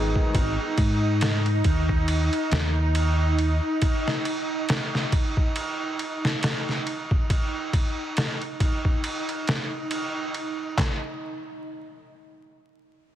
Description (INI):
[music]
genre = trip hop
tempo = 69 BPM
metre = 4/4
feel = swing 57% on 16ths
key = unclear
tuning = A4 = 444 Hz
[part]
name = deep dub fingered electric bass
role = bass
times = 0.0-3.6 s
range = G#1 to G#2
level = -23 LUFS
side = equal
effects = none
[part]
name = bowed-like drone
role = texture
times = 0.0-10.8 s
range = D#4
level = -30 LUFS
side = right 1 dB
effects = built-in reverb
[part]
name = trip hop sampler-style drum kit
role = drums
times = 0.2-11.0 s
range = handclaps, kick drum, ride cymbal, snare drum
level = -25 LUFS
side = equal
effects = none
[sound]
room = little or no reverb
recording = heavily compressed radio sound, vinyl crackle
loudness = -22 LUFS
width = side -12 dB against mid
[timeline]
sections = 0.0-10.8 A section; 10.8-13.2 B section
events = none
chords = 0.0 G#m; 3.8 N.C.